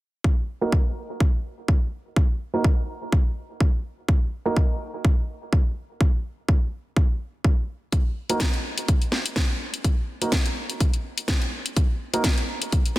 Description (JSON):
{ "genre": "bass house", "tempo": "125 BPM", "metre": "4/4", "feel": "swing 55% on 16ths", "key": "Eb minor", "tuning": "A4 = 441 Hz", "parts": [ { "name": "electronic kick drum", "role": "drums", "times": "0.2-12.8 s", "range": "none", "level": "-20 LUFS", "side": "equal", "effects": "none" }, { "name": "warm concert grand piano", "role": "stabs", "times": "0.6-4.5, 8.3-12.2 s", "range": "Bb3 to Bb4", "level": "-28 LUFS", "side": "right 2 dB", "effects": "sidechain pumping, low-pass filter, digital delay" }, { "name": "house drum kit", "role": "drums", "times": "7.9-13.0 s", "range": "hi-hat, snare drum", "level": "-27 LUFS", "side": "left 1 dB", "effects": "none" } ], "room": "little or no reverb", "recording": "dense, heavily limited modern master", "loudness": "-22 LUFS", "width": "side -18 dB against mid", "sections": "0.2-13.0 A section", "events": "none", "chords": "0.2 Ebm" }